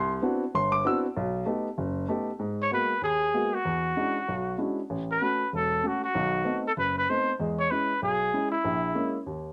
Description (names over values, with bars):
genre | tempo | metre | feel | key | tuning
jazz | 193 BPM | 4/4 | swing 62% on 8ths | G# minor | A4 = 440 Hz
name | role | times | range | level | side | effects
warm upright piano | accompaniment | 0.0-9.5 s | E1 to E6 | -31 LUFS | equal | none
warm trumpet | melody | 2.6-9.2 s | E4 to C#5 | -29 LUFS | equal | none
room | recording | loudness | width
light reverb | none | -28 LUFS | mono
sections
0.0-2.4 A section; 2.4-9.5 B section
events
none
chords
0.0 Cmaj9#11; 1.2 B7b13; 2.4 G#m9; 3.6 E13; 4.9 A6; 6.1 B7b9; 7.4 E6; 8.6 A#m7b5